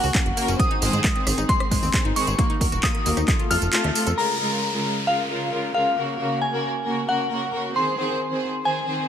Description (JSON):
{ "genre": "uplifting trance", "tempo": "134 BPM", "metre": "4/4", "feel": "straight", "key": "Bb minor", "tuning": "A4 = 440 Hz", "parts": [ { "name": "glassy synth bell", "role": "second line", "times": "0.0-9.1 s", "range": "F5 to F6", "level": "-25 LUFS", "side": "left 1 dB", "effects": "chorus, tremolo, tape echo" }, { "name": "rich studio string section", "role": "sustained chords", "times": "0.0-9.0 s", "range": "C3 to C5", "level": "-26 LUFS", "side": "right 1 dB", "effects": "sidechain pumping" }, { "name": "analog pluck", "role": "arpeggios", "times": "0.0-4.1 s", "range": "Ab3 to A4", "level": "-30 LUFS", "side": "left 4 dB", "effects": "chorus, vintage 12-bit sampler grit, sidechain pumping, dub echo" }, { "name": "plucky analog bass", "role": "bass", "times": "0.0-4.1 s", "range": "Eb1 to Ab2", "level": "-25 LUFS", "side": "equal", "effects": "sidechain pumping" }, { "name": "house drum kit", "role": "drums", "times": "0.0-4.2 s", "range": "handclaps, hi-hat, rim click, tambourine", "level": "-26 LUFS", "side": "right 1 dB", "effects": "overdrive, sidechain pumping on hats, low-pass filter on hats, low-pass filter on snare, sidechain pumping on perc, low-pass filter on perc, low-pass filter on room" }, { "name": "electronic kick drum", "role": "drums", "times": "0.1-3.4 s", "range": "none", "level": "-22 LUFS", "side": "equal", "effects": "overdrive" }, { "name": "downlifter", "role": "sound effects", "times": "4.2-7.8 s", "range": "none", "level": "-31 LUFS", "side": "equal", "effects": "none" } ], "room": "moderate lush hall reverb, RT60 2.1 s", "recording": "none", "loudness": "-20 LUFS", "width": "side -9 dB against mid", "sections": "0.0-4.2 A section; 4.2-9.1 B section", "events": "filter sweep on string section 0.0-4.2; kick drops out 3.7-4.2; band accent 3.7", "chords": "0.0 Gb; 0.6 Ab; 2.4 Ebm; 3.3 F; 4.2 Bbm7; 6.0 Gb; 7.8 Ab", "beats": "0.15 | 0.59 1.04 1.49 1.94 | 2.39 2.83 3.28 3.73 | 4.18 4.62 5.07 5.52 | 5.97 6.42 6.86 7.31 | 7.76 8.21 8.65" }